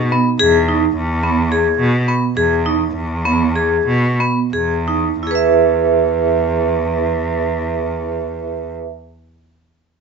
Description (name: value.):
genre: contemporary instrumental, chamber music in an uneven meter.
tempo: 168-217 BPM (eighths).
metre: 7/8.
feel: straight.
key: E major.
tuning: A4 = 440 Hz.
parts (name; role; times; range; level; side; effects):
warm French horn; second line; 0.0-0.9 s; D#4; -28 LUFS; left 14 dB; none.
rich cello; bass; 0.0-8.7 s; E2 to B2; -19 LUFS; equal; none.
vibraphone with hard mallets; arpeggios; 0.1-8.9 s; B3 to E5; -16 LUFS; right 3 dB; none.
room: moderate studio reverb, RT60 0.9 s.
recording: nothing above 7.7 kHz.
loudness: -14 LUFS.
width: side -5 dB against mid.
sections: 0.0-5.2 A section; 5.2-10.0 B section.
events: slowing down 0.9-5.2.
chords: 0.0 E.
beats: 0.12 0.40 0.67 | 0.95 1.23 1.51 1.79 2.07 2.36 2.65 | 2.94 3.25 3.56 3.87 4.19 4.52 4.86 | 5.22 5.57 5.93 6.29 6.64 7.00 7.36 | 7.71 8.07 8.43 8.78.